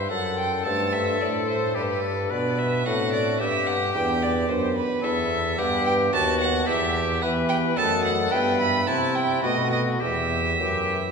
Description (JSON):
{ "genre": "classical, baroque-style sonata movement with continuo", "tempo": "109 BPM", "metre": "3/4", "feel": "straight", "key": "G major, E minor from 5.0 s", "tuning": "A4 = 440 Hz", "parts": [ { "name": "clear oboe", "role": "melody", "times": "0.0-11.0 s", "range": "E4 to B4", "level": "-28 LUFS", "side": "left 5 dB", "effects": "none" }, { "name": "rich violin", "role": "second line", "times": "0.0-11.1 s", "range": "B4 to B5", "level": "-26 LUFS", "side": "right 4 dB", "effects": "none" }, { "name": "pipe organ, flutes", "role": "accompaniment", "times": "0.0-11.1 s", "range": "D#2 to E5", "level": "-27 LUFS", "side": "equal", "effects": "none" }, { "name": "warm bassoon", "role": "bass", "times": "0.0-11.0 s", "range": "D#2 to E3", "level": "-27 LUFS", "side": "equal", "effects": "none" } ], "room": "wet church reverb, RT60 3.2 s", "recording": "recorded in a church or concert hall, nothing above 10.3 kHz", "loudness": "-21 LUFS", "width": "side -5 dB against mid", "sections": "0.0-11.1 A section", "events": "none", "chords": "0.1 D7/F#; 1.8 G; 2.9 D7/A; 3.4 G; 5.0 Em; 6.1 B7/D#; 6.7 Em; 7.8 D#dim/F#; 8.3 Em/G; 8.9 C; 9.4 B7; 10.0 Em", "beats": "| 0.11 0.66 1.21 | 1.77 2.31 2.87 | 3.41 3.95 4.49 | 5.04 5.59 6.13 | 6.68 7.22 7.77 | 8.32 8.87 9.44 | 10.01 10.59" }